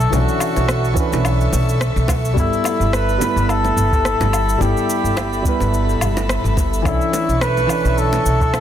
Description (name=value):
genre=sunset chillout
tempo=107 BPM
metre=4/4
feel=swing 55% on 16ths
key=G lydian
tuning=A4 = 440 Hz
part: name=mellow flugelhorn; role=melody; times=0.0-8.6 s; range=E4 to B4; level=-21 LUFS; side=equal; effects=digital delay
part: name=dark concert grand piano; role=accompaniment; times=0.0-8.6 s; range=E3 to B4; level=-23 LUFS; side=moving between left 8 dB and right 5 dB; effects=auto-pan, tape echo
part: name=airy breathy pad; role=sustained chords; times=0.0-8.6 s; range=A4 to C#6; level=-25 LUFS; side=equal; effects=chorus
part: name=upright bass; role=bass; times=0.0-8.6 s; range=G1 to B1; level=-19 LUFS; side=equal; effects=none
part: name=electronic shaker, woodblock and rim click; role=drums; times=0.0-8.6 s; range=none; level=-26 LUFS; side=left 1 dB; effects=overdrive
part: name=bongos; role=percussion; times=0.1-8.6 s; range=none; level=-29 LUFS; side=right 1 dB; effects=none
part: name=electronic kick drum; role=drums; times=1.0-8.5 s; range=none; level=-20 LUFS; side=equal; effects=none
room=light reverb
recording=dense, heavily limited modern master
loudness=-15 LUFS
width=side -10 dB against mid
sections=0.0-8.6 A section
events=none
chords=0.0 Bm11; 2.4 G69; 6.9 Bm11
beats=| 0.12 0.69 1.25 1.81 | 2.37 2.93 3.49 4.05 | 4.61 5.17 5.73 6.29 | 6.85 7.41 7.97 8.54